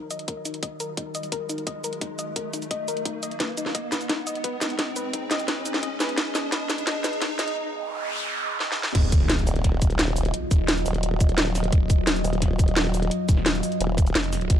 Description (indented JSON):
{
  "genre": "dark technical drum and bass",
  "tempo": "173 BPM",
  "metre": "4/4",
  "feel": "straight",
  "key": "Eb minor",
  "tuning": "A4 = 439 Hz",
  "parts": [
    { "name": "deep dark ambient pad", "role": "sustained chords", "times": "0.0-14.6 s", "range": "Gb3 to F5", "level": "-32 LUFS", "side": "equal", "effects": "chorus, built-in reverb, sidechain pumping" },
    { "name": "soft round pluck", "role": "arpeggios", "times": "0.0-7.4 s", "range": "Eb4 to Eb5", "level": "-31 LUFS", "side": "left 3 dB", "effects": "chorus, vintage 12-bit sampler grit, sidechain pumping, ping-pong delay" },
    { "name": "riser, noise sweep and impact", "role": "sound effects", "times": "0.1-10.3 s", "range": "none", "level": "-32 LUFS", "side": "equal", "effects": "none" },
    { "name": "drum and bass drum kit", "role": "drums", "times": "0.1-14.6 s", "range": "crash cymbal, hi-hat, shaker, snare drum", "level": "-26 LUFS", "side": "equal", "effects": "none" },
    { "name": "electronic kick drum", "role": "drums", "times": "0.3-14.6 s", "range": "none", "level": "-21 LUFS", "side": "equal", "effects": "high-pass filter on kick, high-pass filter on room" },
    { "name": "snarling distorted saw bass", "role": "bass", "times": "8.9-14.6 s", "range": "Eb1 to Ab1", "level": "-27 LUFS", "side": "equal", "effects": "distortion" },
    { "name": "formant-sweep wobble bass", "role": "bass", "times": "9.5-14.1 s", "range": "Eb1", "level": "-25 LUFS", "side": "equal", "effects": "chorus" }
  ],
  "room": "light reverb",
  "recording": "dark, warm production, high-pass filter",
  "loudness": "-22 LUFS",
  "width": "side -10 dB against mid",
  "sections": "0.0-8.9 A section; 8.9-14.6 B section",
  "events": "build-up 0.0-8.9; filter sweep on ambient pad 0.0-8.9; filter sweep on synth pluck 0.0-8.9; riser 0.1-7.6; drum fill 3.4-7.6, 8.6-8.9; break 7.6-8.9; noise sweep 7.6-8.9; drop 8.9-14.6; impact 8.9-10.3",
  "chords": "0.0 Ebmadd9; 3.4 Abm; 8.9 Ebmadd9",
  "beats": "0.28 | 0.63 0.97 1.32 1.67 | 2.01 2.36 2.71 3.05 | 3.40 3.75 4.09 4.44 | 4.79 5.13 5.48 5.83 | 6.18 6.52 6.87 7.22 | 7.56 7.91 8.26 8.60 | 8.95 9.30 9.64 9.99 | 10.34 10.68 11.03 11.38 | 11.72 12.07 12.42 12.77 | 13.11 13.46 13.81 14.15 | 14.50"
}